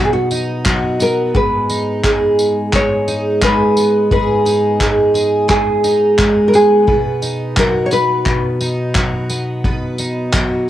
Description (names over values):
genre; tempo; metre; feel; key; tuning
acoustic pop; 87 BPM; 4/4; straight; G# minor; A4 = 439 Hz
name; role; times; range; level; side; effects
nylon-string guitar; melody; 0.0-10.7 s; F#4 to C#5; -17 LUFS; equal; cassette tape, plate reverb
picked twelve-string acoustic guitar; accompaniment; 0.0-10.7 s; G#2 to B4; -15 LUFS; equal; cassette tape, plate reverb
unplugged drum kit; drums; 0.3-10.5 s; handclaps, kick drum, tambourine; -18 LUFS; equal; cassette tape
room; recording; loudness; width
wet booth ambience, RT60 0.2 s; home recording on cassette; -12 LUFS; side -12 dB against mid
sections
0.0-10.7 A section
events
none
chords
0.0 B; 1.3 G#m; 6.9 B